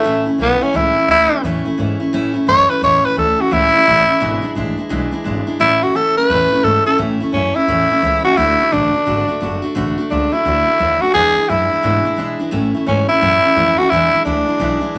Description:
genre	rockabilly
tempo	173 BPM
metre	4/4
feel	swing 64% on 8ths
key	A major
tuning	A4 = 441 Hz
part	growling tenor saxophone	melody	0.0-15.0 s	A3 to C#5	-16 LUFS	equal	none
part	picked steel-string acoustic guitar	accompaniment	0.0-15.0 s	E2 to F#4	-22 LUFS	equal	none
part	upright bass	bass	0.0-15.0 s	F#1 to B2	-26 LUFS	equal	none
room	moderate small room reverb, RT60 0.5 s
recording	none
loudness	-15 LUFS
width	mono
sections	0.0-7.0 A section; 7.0-15.0 B section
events	tenor saxophone solo 0.0-7.0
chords	0.1 A; 4.2 E7; 5.6 A; 8.4 D; 11.1 E7; 12.5 A; 13.9 E7

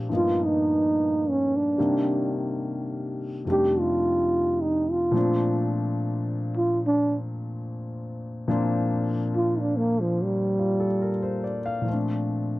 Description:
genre	jazz ballad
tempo	72 BPM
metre	4/4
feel	swing 67% on 8ths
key	Bb major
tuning	A4 = 436 Hz
part	warm grand piano	accompaniment	0.0-12.6 s	F2 to F5	-26 LUFS	left 2 dB	none
part	breathy trombone	melody	0.2-11.8 s	F3 to G4	-23 LUFS	right 1 dB	none
room	light reverb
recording	dry, close 1970s-style studio recording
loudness	-22 LUFS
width	side -18 dB against mid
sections	0.0-11.9 A section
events	trombone solo 0.0-11.9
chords	0.1 G7alt; 1.8 Cm9; 3.4 F13; 5.1 Bbmaj7

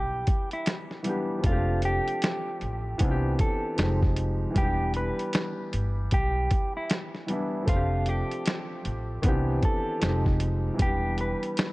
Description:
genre	lo-fi hip hop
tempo	77 BPM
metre	4/4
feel	swing 62% on 16ths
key	E phrygian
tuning	A4 = 438 Hz
part	clean electric guitar	melody	0.0-11.7 s	E4 to B4	-32 LUFS	right 1 dB	spring reverb, low-pass filter
part	clear upright piano	accompaniment	0.0-11.7 s	D#3 to G4	-31 LUFS	left 1 dB	cassette tape, low-pass filter
part	upright bass	bass	0.0-11.3 s	E1 to C2	-28 LUFS	equal	none
part	lo-fi sampler-style drum kit	drums	0.3-11.7 s	hi-hat, kick drum, snare drum	-27 LUFS	equal	none
room	small room ambience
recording	cassette tape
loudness	-24 LUFS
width	side -21 dB against mid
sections	0.0-11.7 A section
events	none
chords	0.0 Em7; 1.4 F6; 3.0 Cmaj9; 3.8 Fm7; 4.6 Em7; 7.7 F6; 9.2 Cmaj9; 10.0 Fm7; 10.8 Em7

